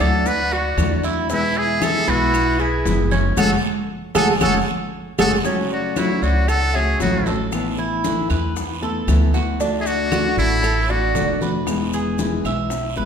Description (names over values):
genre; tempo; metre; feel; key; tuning
latin, Cuban son and guajira; 116 BPM; 4/4; straight; unclear; A4 = 439 Hz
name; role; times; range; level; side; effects
trumpet with metal mute; melody; 0.0-11.4 s; E4 to B4; -23 LUFS; right 1 dB; none
breathy bright jazz flute; second line; 0.0-11.4 s; A4 to F#5; -28 LUFS; left 5 dB; none
nylon-string guitar; accompaniment; 0.0-13.1 s; B2 to F#4; -24 LUFS; left 3 dB; none
Cuban tres; arpeggios; 0.0-13.1 s; C#4 to E5; -24 LUFS; right 4 dB; none
upright bass; bass; 0.0-13.1 s; E1 to E2; -23 LUFS; equal; none
bongos; percussion; 0.0-13.1 s; none; -30 LUFS; left 4 dB; none
claves; percussion; 0.0-12.7 s; none; -35 LUFS; right 5 dB; none
congas; percussion; 0.0-13.1 s; none; -29 LUFS; equal; none
guiro; percussion; 0.0-13.1 s; none; -36 LUFS; right 5 dB; none
maracas; percussion; 0.0-13.0 s; none; -38 LUFS; left 5 dB; none
room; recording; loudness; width
wet recital hall reverb, RT60 1.4 s; recorded in a church or concert hall; -17 LUFS; side -7 dB against mid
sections
0.0-5.4 A section; 5.4-13.1 B section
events
band accent 3.4-5.4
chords
0.0 Dadd9; 1.3 E; 3.4 F#madd9; 5.4 F#m; 7.5 Asus2; 9.6 D; 11.7 E